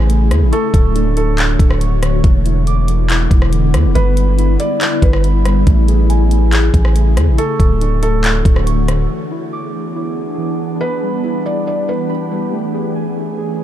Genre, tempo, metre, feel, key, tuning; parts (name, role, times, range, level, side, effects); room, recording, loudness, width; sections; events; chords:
hip hop, atmospheric cloud-rap; 140 BPM; 4/4; half-time; A major; A4 = 441 Hz
ethereal airy pad; sustained chords; 0.0-13.6 s; C#3 to C#5; -20 LUFS; left 2 dB; ensemble chorus, built-in reverb, sidechain pumping
muted felt-like synth keys; arpeggios; 0.0-13.6 s; D3 to D6; -23 LUFS; right 3 dB; chorus, tape echo
long sustained 808-style bass; bass; 0.0-9.1 s; D1 to E2; -13 LUFS; equal
smooth R&B drum kit; drums; 0.1-9.0 s; handclaps, hi-hat, kick drum, rim click; -15 LUFS; equal
felt-muted upright piano; melody; 0.5-12.1 s; A4 to D5; -23 LUFS; right 1 dB; tape echo
little or no reverb; dark, warm production; -12 LUFS; side -12 dB against mid
0.0-9.1 A section; 9.1-13.6 B section
0.0 Amaj7; 0.5 Dmaj7; 2.2 E7; 4.0 G6; 5.7 Amaj7; 7.4 Dmaj7; 9.1 E7; 10.8 G6; 12.5 Amaj7